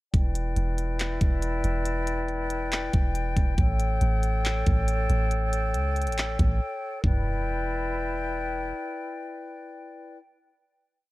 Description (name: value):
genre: hip hop, atmospheric cloud-rap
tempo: 139 BPM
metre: 4/4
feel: half-time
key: E dorian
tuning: A4 = 439 Hz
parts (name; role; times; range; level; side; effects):
- hollow flute section; sustained chords; 0.1-10.2 s; E4 to G5; -30 LUFS; left 2 dB; sidechain pumping
- soft 808-style bass; bass; 0.1-8.7 s; E1 to C#2; -27 LUFS; equal; tube saturation
- trap drum kit; drums; 0.1-7.1 s; handclaps, hi-hat, kick drum, toms; -26 LUFS; equal; none
room: little or no reverb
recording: worn, warbling old tape, cassette tape, warbly pitch drift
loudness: -24 LUFS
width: side -18 dB against mid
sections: 0.1-7.0 verse; 7.0-10.5 final chord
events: break 6.6-7.0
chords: 0.1 Em7; 3.6 A7; 7.0 Em7